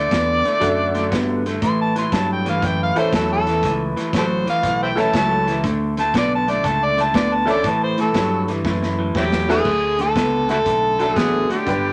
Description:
electric blues shuffle; 120 BPM; 4/4; swing 67% on 8ths; D major; A4 = 440 Hz
overdriven harmonica; melody; 0.0-11.9 s; C4 to C6; -22 LUFS; equal
electric guitar through a small old amp; riff; 0.0-11.9 s; G2 to B3; -26 LUFS; equal
fingered electric bass; bass; 0.0-11.9 s; G1 to A2; -28 LUFS; equal
crunchy breakbeat drum kit; drums; 0.1-11.8 s; crash cymbal, hi-hat, kick drum, snare drum; -28 LUFS; equal
honky-tonk upright piano; accompaniment; 0.6-11.9 s; E3 to B4; -25 LUFS; equal
light reverb; -19 LUFS; mono
0.0-9.7 A section; 9.7-11.9 B section
harmonica solo 0.0-9.7; drum fill 8.7-9.7
0.0 D; 1.6 A; 5.6 D5; 7.6 A5; 9.7 D

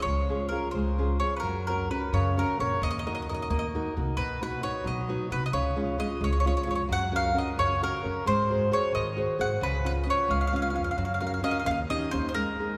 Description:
italian folk, Italian serenade; 88 BPM (dotted quarters); 6/8; straight; F# major; A4 = 441 Hz
mandolin; melody; 0.0-12.8 s; Bb4 to F#5; -32 LUFS; equal
nylon-string guitar; accompaniment; 0.0-12.8 s; B2 to B#4; -33 LUFS; equal
upright bass; bass; 0.1-12.3 s; A#1 to G#2; -33 LUFS; equal
wet church reverb, RT60 3.8 s; recorded in a church or concert hall; -28 LUFS; mono
0.0-1.4 A section; 1.4-12.4 B section
0.0 Db; 1.4 F#; 2.8 D#m; 4.2 B; 5.5 C#; 6.9 F#; 8.3 G#7; 9.6 C#7; 11.0 F#; 11.7 D#7

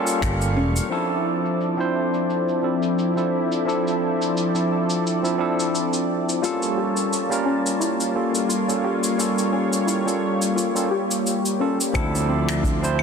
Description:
sunset chillout; 87 BPM; 4/4; swing 55% on 16ths; D minor; A4 = 440 Hz
barky tine electric piano; accompaniment; 0.0-13.0 s; F3 to C5; -24 LUFS; equal; auto-pan, tape echo
lush unison pad; sustained chords; 0.0-13.0 s; F3 to C#6; -24 LUFS; equal; chorus
soft round pluck; arpeggios; 0.0-0.9, 6.4-12.8 s; C4 to G4; -30 LUFS; left 4 dB; chorus, tape echo
jazz brush drum kit; drums; 0.1-13.0 s; cabasa, claves, crash cymbal, finger snaps; -29 LUFS; equal; low-pass filter on cymbals, low-pass filter on perc, soft clipping on snare, low-pass filter on snare, low-pass filter on room
growling fingered electric bass; bass; 0.2-0.8, 11.9-13.0 s; E1 to D2; -23 LUFS; equal; overdrive
electronic kick drum; drums; 0.2-0.4, 11.9-12.8 s; -26 LUFS; equal
moderate lush hall reverb, RT60 2.2 s; dense, heavily limited modern master; -20 LUFS; side -6 dB against mid
0.9-11.9 A section; 11.9-13.0 B section
filter sweep on drum 0.9-11.9
0.0 A7b9b13; 0.9 Dm9; 6.4 A7b9b13; 11.9 Dm9

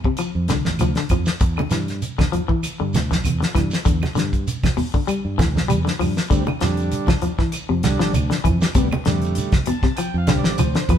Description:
afrobeat; 98 BPM; 4/4; swing 54% on 16ths; D dorian; A4 = 440 Hz
damped 70s drum kit; drums; 0.0-11.0 s; hi-hat, kick drum, snare drum; -21 LUFS; equal
electric guitar at the edge of break-up; arpeggios; 0.1-11.0 s; B2 to G3; -24 LUFS; left 6 dB
fingered electric bass; bass; 0.2-11.0 s; A1 to G2; -24 LUFS; right 1 dB
claves; percussion; 0.2-11.0 s; -38 LUFS; right 5 dB
congas; percussion; 0.2-11.0 s; -26 LUFS; right 3 dB
shekere; percussion; 0.2-11.0 s; -28 LUFS; right 4 dB
combo organ; accompaniment; 6.3-11.0 s; D3 to A5; -26 LUFS; right 4 dB; spring reverb
moderate stone room reverb, RT60 1.3 s; band playing live in one room; -18 LUFS; side -9 dB against mid
0.0-11.0 A section
transistor combo organ fill 9.4-11.0
0.0 Dm7; 1.4 Em7; 6.3 Dm7

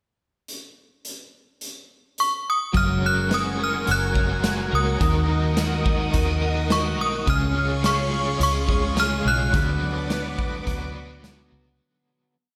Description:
dream pop; 106 BPM; 4/4; straight; F# major; A4 = 440 Hz
raw garage drum kit; drums; 0.5-11.4 s; hi-hat, kick drum, snare drum; -29 LUFS; equal
synth chime; melody; 2.2-11.2 s; C#6 to F#6; -27 LUFS; equal; ensemble chorus, digital delay
biting overdriven guitar; accompaniment; 2.7-12.3 s; C#3 to B4; -33 LUFS; equal; tremolo, lush chorus
string machine, full ensemble; sustained chords; 2.7-11.8 s; G#4 to D#6; -33 LUFS; equal; ensemble chorus
clean electric guitar; arpeggios; 2.7-12.4 s; C#3 to A#4; -31 LUFS; equal; analog chorus, digital delay
vintage muted fingered electric bass; bass; 2.7-11.8 s; F#1 to D#2; -29 LUFS; equal
light reverb, studio reverb; -22 LUFS; mono
0.5-2.7 pickup bar; 2.7-11.8 verse
fade-out 9.5-11.8
0.5 N.C.; 2.7 F#add9; 5.0 D#m; 7.3 C#; 9.5 Bm/D

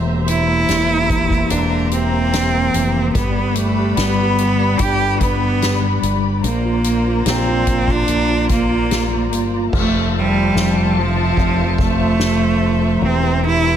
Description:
pop ballad; 73 BPM; 4/4; straight; F major; A4 = 440 Hz
tine electric piano; accompaniment; 0.0-13.8 s; E3 to F4; -21 LUFS; equal; fast stereo tremolo
muted symphonic string section; sustained chords; 0.0-13.8 s; F4 to B5; -24 LUFS; left 3 dB
fingered electric bass; bass; 0.0-13.8 s; E1 to Bb1; -21 LUFS; equal
clear cello; melody; 0.3-13.8 s; F3 to G4; -19 LUFS; right 3 dB
soft-mallet drum kit; drums; 0.3-13.6 s; crash cymbal, hi-hat, kick drum, ride cymbal, snare drum; -23 LUFS; equal
light reverb, small room ambience; -14 LUFS; side -9 dB against mid
0.0-9.7 A section; 9.7-13.8 A section
0.0 C7/E; 3.2 G; 6.4 Bbadd9; 9.7 Fmaj7; 13.0 C7/E

